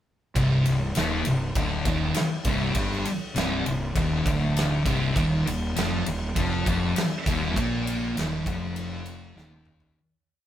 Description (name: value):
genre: stoner and doom metal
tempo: 100 BPM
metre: 4/4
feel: straight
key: C minor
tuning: A4 = 443 Hz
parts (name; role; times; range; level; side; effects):
- thick fuzz guitar; riff; 0.3-10.0 s; C2 to Bb3; -31 LUFS; right 6 dB; distortion
- thick fuzz guitar; riff; 0.4-10.0 s; C2 to Bb3; -26 LUFS; left 3 dB; distortion
- fuzz fingered electric bass; bass; 0.4-9.9 s; C1 to Bb1; -30 LUFS; right 1 dB; overdrive, tube saturation
- big rock drum kit; drums; 0.4-9.9 s; kick drum, ride cymbal, snare drum, toms; -29 LUFS; equal; none
room: light reverb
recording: band playing live in one room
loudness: -23 LUFS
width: side -11 dB against mid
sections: 0.4-10.0 riff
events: fade-out 7.6-10.0; drum fill 9.4-10.0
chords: 0.4 Cm; 5.2 Eb5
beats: | 0.36 0.96 1.56 2.16 | 2.76 3.36 3.96 4.56 | 5.16 5.76 6.37 6.97 | 7.57 8.17 8.77 9.37